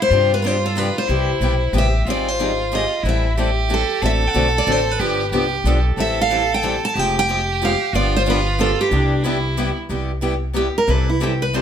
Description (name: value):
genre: acoustic string swing (jazz manouche)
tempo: 184 BPM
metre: 3/4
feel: swing 61% on 8ths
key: C major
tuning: A4 = 440 Hz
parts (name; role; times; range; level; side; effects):
- picked steel-string acoustic guitar; melody; 0.0-11.6 s; E4 to A5; -21 LUFS; equal; none
- clear violin; second line; 0.0-9.8 s; D4 to A4; -23 LUFS; right 2 dB; none
- picked steel-string acoustic guitar; accompaniment; 0.1-11.6 s; C3 to A4; -25 LUFS; left 5 dB; none
- picked steel-string acoustic guitar; accompaniment; 0.1-11.6 s; C3 to A4; -28 LUFS; right 4 dB; none
- upright bass; bass; 0.1-11.6 s; F1 to G2; -21 LUFS; equal; none
room: moderate studio reverb, RT60 0.9 s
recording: none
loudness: -16 LUFS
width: side -8 dB against mid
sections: 0.0-2.1 A section; 2.1-9.9 B section; 9.9-11.6 C section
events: steel-string acoustic guitar solo 9.9-11.6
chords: 0.1 G7sus4; 1.1 Cmaj7; 2.1 Abmaj7; 3.0 Am7; 4.0 D7/A; 5.0 G9; 6.0 Am7; 7.0 Fmadd9; 7.9 G7; 8.9 Cmaj7; 10.9 Am7/C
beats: | 0.11 0.44 0.77 | 1.09 1.42 1.74 | 2.07 2.40 2.72 | 3.05 3.37 3.70 | 4.03 4.35 4.68 | 5.00 5.33 5.66 | 5.98 6.31 6.64 | 6.96 7.29 7.62 | 7.94 8.27 8.60 | 8.92 9.25 9.57 | 9.90 10.23 10.56 | 10.88 11.21 11.54